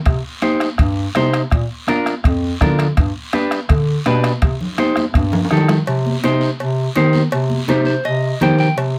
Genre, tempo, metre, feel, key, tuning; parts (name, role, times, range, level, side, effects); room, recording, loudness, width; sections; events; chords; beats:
latin, cumbia; 165 BPM; 4/4; straight; C dorian; A4 = 441 Hz
mellow bass clarinet; bass; 0.1-9.0 s; F2 to Eb3; -20 LUFS; equal
bombo; percussion; 0.1-5.9 s; -20 LUFS; equal
guiro; percussion; 0.1-9.0 s; -36 LUFS; equal
timbales and cowbell; percussion; 0.1-9.0 s; -28 LUFS; equal
semi-hollow electric guitar; accompaniment; 0.4-8.8 s; D4 to G5; -20 LUFS; equal
congas; percussion; 0.4-9.0 s; -26 LUFS; equal
little or no reverb; close, detailed microphones; -17 LUFS; mono
0.0-5.9 A section; 5.9-9.0 B section
drum fill 5.0-5.9; clean electric guitar fill 7.7-8.8
0.0 Cm; 1.5 Bb; 3.0 G; 4.4 Cm
| 0.06 0.43 0.79 1.15 | 1.52 1.88 2.24 2.61 | 2.97 3.33 3.70 4.06 | 4.42 4.79 5.15 5.51 | 5.88 6.24 6.60 6.96 | 7.33 7.69 8.05 8.41 | 8.78